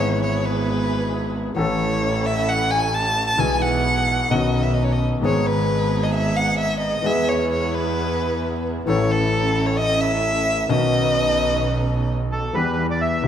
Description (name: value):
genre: tango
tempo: 132 BPM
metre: 4/4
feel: rubato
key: E major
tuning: A4 = 440 Hz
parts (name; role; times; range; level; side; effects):
- warm violin; second line; 0.0-12.1 s; A4 to A5; -22 LUFS; left 1 dB; none
- warm concert grand piano; accompaniment; 0.0-13.3 s; G#1 to A4; -23 LUFS; left 2 dB; none
- dark chamber string section; stabs; 0.0-12.4 s; B3 to B4; -28 LUFS; right 3 dB; none
- clear double bass; bass; 0.0-13.3 s; G#1 to E2; -26 LUFS; right 2 dB; none
- bandoneon; melody; 12.3-13.3 s; A4 to E5; -23 LUFS; right 1 dB; none
room: moderate concert hall reverb, RT60 1.9 s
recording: minimal, uncompressed stereo recording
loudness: -18 LUFS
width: side -9 dB against mid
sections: 0.0-12.5 A section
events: violin solo 0.0-12.5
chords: 0.0 E/G#; 1.6 A; 3.4 E/B; 4.3 Badd9; 5.2 G#m; 7.1 E; 8.9 A; 10.7 Badd9; 12.5 Em